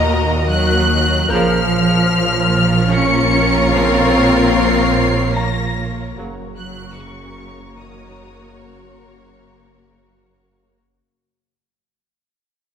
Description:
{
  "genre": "cinematic, suspense film score",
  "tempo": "74 BPM",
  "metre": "3/4",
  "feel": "straight",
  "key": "unclear",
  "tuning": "A4 = 440 Hz",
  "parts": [
    { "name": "rich symphonic violin section", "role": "melody", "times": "0.0-10.6 s", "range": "Bb5 to Db7", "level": "-20 LUFS", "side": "left 2 dB", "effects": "none" },
    { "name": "clear symphonic violin section", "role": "second line", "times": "0.0-10.8 s", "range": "Bb4 to Eb5", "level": "-22 LUFS", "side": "equal", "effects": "none" },
    { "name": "rich symphonic viola section", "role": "accompaniment", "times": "0.0-10.8 s", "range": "Bb3 to Gb4", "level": "-22 LUFS", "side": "left 3 dB", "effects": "none" },
    { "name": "clear symphonic double bass section", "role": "bass", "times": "0.0-10.8 s", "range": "F#1 to Eb2", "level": "-22 LUFS", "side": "right 4 dB", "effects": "none" },
    { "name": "rich symphonic cello section", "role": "bass", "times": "0.0-10.6 s", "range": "Bb2 to Db4", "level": "-19 LUFS", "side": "right 1 dB", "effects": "none" },
    { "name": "saturated sub bass", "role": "drone", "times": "0.0-11.0 s", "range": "F#1 to Eb2", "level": "-26 LUFS", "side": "left 1 dB", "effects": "none" },
    { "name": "bright concert grand piano", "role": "texture", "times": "0.0-11.1 s", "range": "Db5 to G6", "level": "-30 LUFS", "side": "left 2 dB", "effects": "none" },
    { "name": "dark French horn section", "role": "sustained chords", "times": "1.3-8.9 s", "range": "Bb3 to Bb4", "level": "-25 LUFS", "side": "left 3 dB", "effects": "none" },
    { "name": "warm trombone section", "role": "sustained chords", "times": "1.3-8.9 s", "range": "C#3 to F#3", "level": "-26 LUFS", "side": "right 5 dB", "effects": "none" },
    { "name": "rich studio violin section", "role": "texture", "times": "6.2-10.6 s", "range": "A#5 to C#6", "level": "-48 LUFS", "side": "left 7 dB", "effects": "none" }
  ],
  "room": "moderate scoring stage reverb, RT60 2.0 s",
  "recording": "none",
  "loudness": "-12 LUFS",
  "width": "side -8 dB against mid",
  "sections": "0.0-11.0 A section",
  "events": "fade-out 0.0-11.0",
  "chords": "0.0 Ebm; 1.3 Bbm; 6.2 F#",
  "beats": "0.49 | 1.30 2.11 2.92 | 3.73 4.54 5.35 | 6.17 6.98 7.79 | 8.60 9.41 10.22"
}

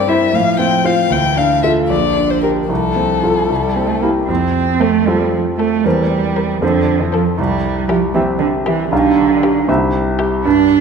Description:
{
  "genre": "quick classical-period movement for piano quartet",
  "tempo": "78 BPM (dotted quarters)",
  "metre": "6/8",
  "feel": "straight",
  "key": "F major",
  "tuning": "A4 = 439 Hz",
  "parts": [
    { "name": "dark violin", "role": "melody", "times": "0.0-10.4 s", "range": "A4 to G5", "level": "-18 LUFS", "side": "left 8 dB", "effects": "none" },
    { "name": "rich cello", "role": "second line", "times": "0.0-10.8 s", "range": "D3 to D4", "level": "-17 LUFS", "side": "right 7 dB", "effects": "none" },
    { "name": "clear concert grand piano", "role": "accompaniment", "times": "0.0-10.8 s", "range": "Bb1 to F5", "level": "-16 LUFS", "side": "equal", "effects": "none" },
    { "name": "dark violin", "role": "second line", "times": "4.8-10.4 s", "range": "G4 to Bb4", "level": "-25 LUFS", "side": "left 4 dB", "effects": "none" }
  ],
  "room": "wet scoring stage reverb, RT60 1.9 s",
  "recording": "minimal, uncompressed stereo recording",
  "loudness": "-13 LUFS",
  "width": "side -6 dB against mid",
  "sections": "0.0-4.3 A section; 4.3-10.8 B section",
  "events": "none",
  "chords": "0.3 F/A; 1.1 Dm; 1.9 Gm/Bb; 2.7 F/C; 3.5 C; 4.3 F; 5.8 C7/E; 6.6 F; 7.4 C; 8.9 G7/B; 9.7 C",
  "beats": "0.35 | 1.12 1.90 | 2.70 3.50 | 4.29 5.07 | 5.85 6.62 | 7.38 8.15 | 8.91 9.68 | 10.45"
}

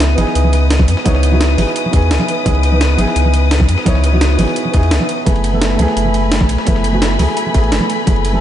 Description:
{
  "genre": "liquid drum and bass",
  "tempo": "171 BPM",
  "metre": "4/4",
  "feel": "straight",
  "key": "C# minor",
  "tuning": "A4 = 440 Hz",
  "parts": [
    { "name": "dark grand piano", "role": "accompaniment", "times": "0.0-8.4 s", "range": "A3 to C#5", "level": "-18 LUFS", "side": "right 1 dB", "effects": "diffuse ambient delay" },
    { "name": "rich studio string section", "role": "sustained chords", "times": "0.0-8.4 s", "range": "A3 to D#6", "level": "-22 LUFS", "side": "left 3 dB", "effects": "none" },
    { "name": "warm sub bass", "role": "bass", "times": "0.0-8.4 s", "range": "F#1 to F#2", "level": "-14 LUFS", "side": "equal", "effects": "none" },
    { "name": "dusty soul sampler-style drum kit", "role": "drums", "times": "0.0-8.3 s", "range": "hi-hat, ride cymbal, snare drum", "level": "-28 LUFS", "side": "right 1 dB", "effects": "high-pass filter on cymbals, high-pass filter on snare, high-pass filter on hats, high-pass filter on room" },
    { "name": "jungle sampler-style drum kit", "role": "drums", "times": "0.0-8.3 s", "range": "hi-hat, ride cymbal, snare drum", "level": "-22 LUFS", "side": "right 1 dB", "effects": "none" },
    { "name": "congas", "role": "percussion", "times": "0.2-8.4 s", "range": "none", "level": "-22 LUFS", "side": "right 1 dB", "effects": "none" },
    { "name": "electronic kick drum", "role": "drums", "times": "0.8-8.1 s", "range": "none", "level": "-14 LUFS", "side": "equal", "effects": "none" }
  ],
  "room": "light reverb, digital ambience",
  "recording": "nothing above 10.6 kHz",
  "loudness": "-11 LUFS",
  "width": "side -11 dB against mid",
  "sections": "0.0-8.4 A section",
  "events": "none",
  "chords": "0.0 C#m9; 5.3 F#m11",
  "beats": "0.00 0.35 0.70 | 1.05 1.41 1.76 2.11 | 2.46 2.81 3.16 3.51 | 3.86 4.21 4.56 4.91 | 5.26 5.62 5.97 6.32 | 6.67 7.02 7.37 7.72 | 8.07"
}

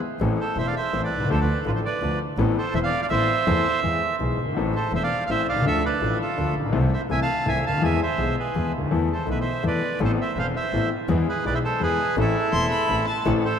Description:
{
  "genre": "tango",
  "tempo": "165 BPM",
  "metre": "3/4",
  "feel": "rubato",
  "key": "A harmonic minor",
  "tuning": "A4 = 439 Hz",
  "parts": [
    { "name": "clear concert grand piano", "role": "accompaniment", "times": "0.2-13.4 s", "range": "E1 to A4", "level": "-24 LUFS", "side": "left 3 dB", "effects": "none" },
    { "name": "rich double bass", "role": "bass", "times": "0.2-13.4 s", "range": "E1 to E2", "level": "-28 LUFS", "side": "right 2 dB", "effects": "none" },
    { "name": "bandoneon", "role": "melody", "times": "0.4-13.6 s", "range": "E4 to A5", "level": "-25 LUFS", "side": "right 3 dB", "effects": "none" },
    { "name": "warm violin", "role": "second line", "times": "12.5-13.2 s", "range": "A5 to C6", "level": "-26 LUFS", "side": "left 1 dB", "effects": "none" }
  ],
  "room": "wet cathedral reverb, RT60 5.9 s",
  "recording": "in a vast, echoing space",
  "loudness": "-21 LUFS",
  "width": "side -8 dB against mid",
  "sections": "0.0-13.3 A section",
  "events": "none",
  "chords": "0.2 Am; 1.3 Dm; 2.4 Amadd9; 3.5 Am/E; 3.8 E; 4.6 Am; 5.7 Dm; 6.7 Am/C; 7.8 E; 8.9 Esus4; 10.0 Amadd9; 11.1 E; 12.2 Am",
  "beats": "| 0.20 0.57 0.93 | 1.30 1.66 2.02 | 2.38 2.75 3.11 | 3.48 3.84 4.20 | 4.57 4.93 5.29 | 5.66 6.02 6.38 | 6.74 7.10 7.47 | 7.83 8.19 8.55 | 8.92 9.28 9.64 | 10.00 10.37 10.73 | 11.09 11.45 11.81 | 12.17 12.54 12.90 | 13.26"
}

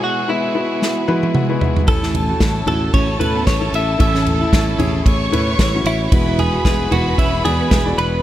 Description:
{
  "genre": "piano-driven pop",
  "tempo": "113 BPM",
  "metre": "4/4",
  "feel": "swing 56% on 16ths",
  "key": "A major",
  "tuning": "A4 = 440 Hz",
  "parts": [
    { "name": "direct-recorded clean electric guitar", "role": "melody", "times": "0.0-8.2 s", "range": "E4 to E5", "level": "-22 LUFS", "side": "equal", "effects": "analog chorus" },
    { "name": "warm baby grand piano", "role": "accompaniment", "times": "0.0-8.2 s", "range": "A2 to B5", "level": "-22 LUFS", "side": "left 4 dB", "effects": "none" },
    { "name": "warm studio string section", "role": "sustained chords", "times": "0.0-8.2 s", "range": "E3 to G#4", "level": "-30 LUFS", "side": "right 1 dB", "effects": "none" },
    { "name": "unplugged drum kit", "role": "drums", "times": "0.8-8.1 s", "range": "kick drum, ride cymbal, snare drum, toms", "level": "-18 LUFS", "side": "right 1 dB", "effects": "none" },
    { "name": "warm studio violin section", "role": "second line", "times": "1.9-8.2 s", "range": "A4 to C#6", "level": "-26 LUFS", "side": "right 1 dB", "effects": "none" },
    { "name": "fingered electric bass", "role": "bass", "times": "1.9-8.2 s", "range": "E1 to A2", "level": "-21 LUFS", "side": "equal", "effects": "none" },
    { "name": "fingerpicked plugged-in steel-string acoustic guitar", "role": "riff", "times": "2.0-7.7 s", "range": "B3 to F#4", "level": "-27 LUFS", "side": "right 4 dB", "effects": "none" }
  ],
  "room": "small room ambience",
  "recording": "none",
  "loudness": "-14 LUFS",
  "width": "side -13 dB against mid",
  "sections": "0.0-8.2 A section",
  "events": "drum fill 0.8-1.9; grand piano fill 0.8-1.9",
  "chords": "0.0 Eadd9; 1.9 A; 6.1 Eadd9",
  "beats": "0.28 0.81 1.34 | 1.88 2.41 2.94 3.47 | 4.00 4.53 5.06 5.59 | 6.12 6.65 7.18 7.71"
}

